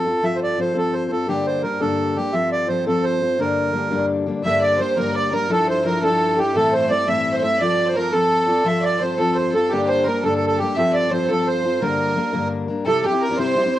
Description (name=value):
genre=celtic folk, Celtic jig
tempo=114 BPM (dotted quarters)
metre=6/8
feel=straight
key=G dorian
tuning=A4 = 441 Hz
part: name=accordion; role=melody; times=0.0-13.8 s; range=G4 to E5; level=-20 LUFS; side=right 2 dB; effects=cassette tape, plate reverb
part: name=fingerpicked steel-string acoustic guitar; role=accompaniment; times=0.0-13.8 s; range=G2 to Bb4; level=-22 LUFS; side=left 4 dB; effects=cassette tape, plate reverb
part: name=warm cello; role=drone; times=0.0-12.9 s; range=G2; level=-37 LUFS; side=left 1 dB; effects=cassette tape
part: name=dark fiddle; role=second line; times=4.4-13.8 s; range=G4 to E5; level=-31 LUFS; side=left 2 dB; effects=cassette tape, plate reverb
part: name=dark violin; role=second line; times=4.5-13.8 s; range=G4 to E5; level=-28 LUFS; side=right 2 dB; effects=cassette tape, plate reverb
room=wet booth ambience, RT60 0.2 s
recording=home recording on cassette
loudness=-17 LUFS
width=side -13 dB against mid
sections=0.0-4.4 A section; 4.4-12.9 A section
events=none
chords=0.0 F; 1.3 Gm; 2.3 F; 3.4 Gm; 5.5 Dmadd9; 6.6 Am; 7.6 F; 9.7 Gm; 10.8 F; 11.8 Gm; 12.9 C